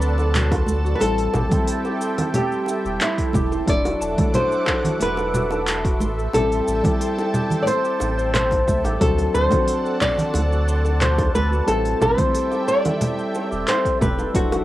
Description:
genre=sunset chillout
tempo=90 BPM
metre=4/4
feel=straight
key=A dorian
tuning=A4 = 440 Hz
part: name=flamenco guitar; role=melody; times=0.0-14.6 s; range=E4 to D5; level=-23 LUFS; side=left 1 dB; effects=tape echo
part: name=soft electric-piano-like synth keys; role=accompaniment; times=0.0-14.6 s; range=F#3 to A4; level=-27 LUFS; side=equal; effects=chorus, auto-pan, cassette tape
part: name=lush unison pad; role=sustained chords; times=0.0-14.6 s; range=A4 to D6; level=-29 LUFS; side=right 1 dB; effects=chorus, phaser, vintage 12-bit sampler grit, cassette tape
part: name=concert harp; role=arpeggios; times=0.0-14.6 s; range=F#4 to C6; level=-31 LUFS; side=left 2 dB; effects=cassette tape, analog delay
part: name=warm sub bass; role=bass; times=0.0-14.6 s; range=E1 to D2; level=-23 LUFS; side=equal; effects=none
part: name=deep house drum kit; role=drums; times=0.0-14.6 s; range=congas, handclaps, hi-hat, shaker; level=-25 LUFS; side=equal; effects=cassette tape
part: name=bongos and congas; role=percussion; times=0.2-14.6 s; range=none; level=-27 LUFS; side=right 2 dB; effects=none
part: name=electronic kick drum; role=drums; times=0.5-14.5 s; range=none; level=-23 LUFS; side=equal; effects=cassette tape
room=light reverb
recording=home recording on cassette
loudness=-18 LUFS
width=side -15 dB against mid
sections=0.0-14.6 A section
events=none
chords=0.0 D7; 1.0 Am7; 3.7 E9sus4; 6.0 Am7; 9.0 D7; 11.7 Am7

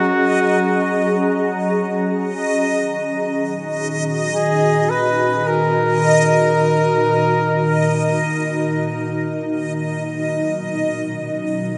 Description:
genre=ambient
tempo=free time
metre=none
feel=none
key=unclear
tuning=A4 = 439 Hz
part: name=warm flugelhorn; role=melody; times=0.0-8.9 s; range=F#4 to B4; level=-23 LUFS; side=equal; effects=tape echo
part: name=ethereal airy pad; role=sustained chords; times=0.0-11.8 s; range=A#2 to A#5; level=-22 LUFS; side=equal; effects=ensemble chorus, built-in reverb
part: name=backwards swelling texture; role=texture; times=0.0-11.8 s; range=D#5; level=-24 LUFS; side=equal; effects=built-in reverb
room=wet huge ambient reverb, RT60 8.8 s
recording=nothing above 10.7 kHz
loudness=-19 LUFS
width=mono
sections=0.0-11.8 A section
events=none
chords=0.0 F#; 2.6 D#m; 9.5 B

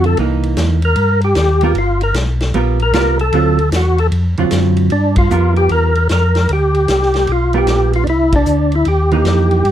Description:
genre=soul jazz organ trio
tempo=152 BPM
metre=4/4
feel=swing 66% on 8ths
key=unclear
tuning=A4 = 440 Hz
part: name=percussive tonewheel organ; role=melody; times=0.0-9.7 s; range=D4 to Bb4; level=-15 LUFS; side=left 1 dB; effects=slow rotary speaker, chorus vibrato
part: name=hollow-body jazz guitar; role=accompaniment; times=0.0-9.6 s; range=D3 to Bb4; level=-18 LUFS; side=right 6 dB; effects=none
part: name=mellow tonewheel organ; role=bass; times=0.0-9.7 s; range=G1 to G2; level=-15 LUFS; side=equal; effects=chorus vibrato, slow rotary speaker
part: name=vintage drum kit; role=drums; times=0.0-9.7 s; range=hi-hat, kick drum, ride cymbal, snare drum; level=-22 LUFS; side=left 1 dB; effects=none
room=light reverb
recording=dark, warm production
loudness=-12 LUFS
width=side -11 dB against mid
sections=0.0-4.9 A section; 4.9-9.7 B section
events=tonewheel organ solo 0.0-4.9; band accent 5.1, 8.3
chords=0.2 C7#9; 1.8 G7#9; 3.3 D7#9; 4.9 G7#9; 8.1 C7#9

